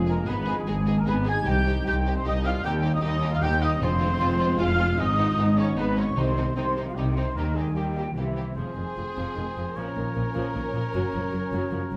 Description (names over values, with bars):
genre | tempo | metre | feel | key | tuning
cinematic, heroic adventure film score | 152 BPM | 3/4 | straight | F phrygian from 8.6 s | A4 = 439 Hz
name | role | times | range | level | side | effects
warm symphonic viola section | accompaniment | 0.0-12.0 s | Eb3 to Ab4 | -36 LUFS | equal | none
dark French horn section | sustained chords | 0.0-12.0 s | F3 to G4 | -36 LUFS | equal | none
concert harp | arpeggios | 0.0-12.0 s | F2 to Db5 | -36 LUFS | equal | none
mellow trumpet section | stabs | 0.0-12.0 s | E4 to Ab5 | -35 LUFS | equal | none
rich symphonic double bass section | bass | 0.0-12.0 s | F1 to Eb2 | -32 LUFS | equal | none
warm symphonic cello section | bass | 0.0-12.0 s | C2 to Eb3 | -32 LUFS | equal | none
warm symphonic violin section | melody | 0.1-12.0 s | Eb4 to Bb4 | -41 LUFS | equal | none
large flute ensemble | second line | 0.1-11.8 s | E5 to Ab6 | -34 LUFS | equal | none
warm symphonic violin section | second line | 0.1-12.0 s | G3 to F4 | -43 LUFS | equal | none
timpani | percussion | 3.8-6.7 s | F2 to C3 | -39 LUFS | equal | none
warm oboe | second line | 8.5-12.0 s | C5 to Db5 | -39 LUFS | equal | none
room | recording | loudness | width
moderate recital hall reverb, RT60 1.4 s | none | -25 LUFS | mono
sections
0.0-8.6 A section; 8.6-12.0 B section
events
none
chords
0.3 Abm; 1.5 Cm; 2.6 Eb; 3.8 Fm; 5.0 Abm; 6.2 Cm; 7.4 Eb; 8.2 C7; 8.6 Fm; 9.8 Bbm; 10.9 Gb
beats
| 0.27 0.67 1.06 | 1.46 1.86 2.25 | 2.64 3.03 3.42 | 3.81 4.21 4.59 | 4.99 5.38 5.78 | 6.17 6.56 6.96 | 7.36 7.76 8.17 | 8.58 8.98 9.37 | 9.77 10.16 10.55 | 10.94 11.34 11.73